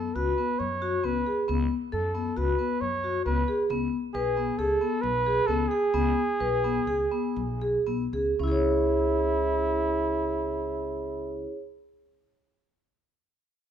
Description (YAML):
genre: contemporary instrumental, chamber music in an uneven meter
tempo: 112-135 BPM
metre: 5/4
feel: straight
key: C# minor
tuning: A4 = 435 Hz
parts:
  - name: mellow flugelhorn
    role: melody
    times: 0.0-11.5 s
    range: E4 to C#5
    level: -29 LUFS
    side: right 3 dB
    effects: none
  - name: vibraphone with medium mallets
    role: arpeggios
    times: 0.0-11.6 s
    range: B3 to C#5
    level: -27 LUFS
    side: left 1 dB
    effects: none
  - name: upright bass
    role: bass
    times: 0.0-11.5 s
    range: B1 to F#2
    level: -32 LUFS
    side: left 1 dB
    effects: none
room: light reverb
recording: minimal, uncompressed stereo recording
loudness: -24 LUFS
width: side -9 dB against mid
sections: 0.0-8.4 A section; 8.4-11.1 B section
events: slowing down 4.6-8.4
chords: 0.0 B5/C#; 3.7 Amaj9/B (rootless); 8.4 C#m